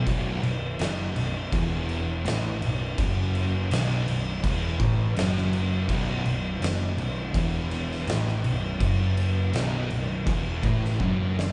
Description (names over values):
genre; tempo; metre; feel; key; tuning
stoner and doom metal; 82 BPM; 4/4; straight; unclear; A4 = 439 Hz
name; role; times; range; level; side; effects
thick fuzz guitar; riff; 0.0-11.5 s; B1 to A2; -33 LUFS; equal; distortion
thick fuzz guitar; riff; 0.0-11.5 s; B1 to A2; -31 LUFS; equal; distortion
fuzz picked electric bass; bass; 0.0-11.5 s; B0 to A1; -34 LUFS; equal; overdrive
oversized low-tuned drum kit; drums; 0.1-11.5 s; crash cymbal, kick drum, snare drum; -32 LUFS; equal; none
room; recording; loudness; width
moderate large studio reverb, RT60 1.2 s; band playing live in one room, nothing above 10.3 kHz; -26 LUFS; mono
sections
0.0-11.5 A section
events
drum fill 11.0-11.5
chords
0.0 B5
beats
| 0.06 0.79 1.52 2.25 | 2.98 3.71 4.43 5.16 | 5.89 6.62 7.35 8.07 | 8.80 9.53 10.26 10.99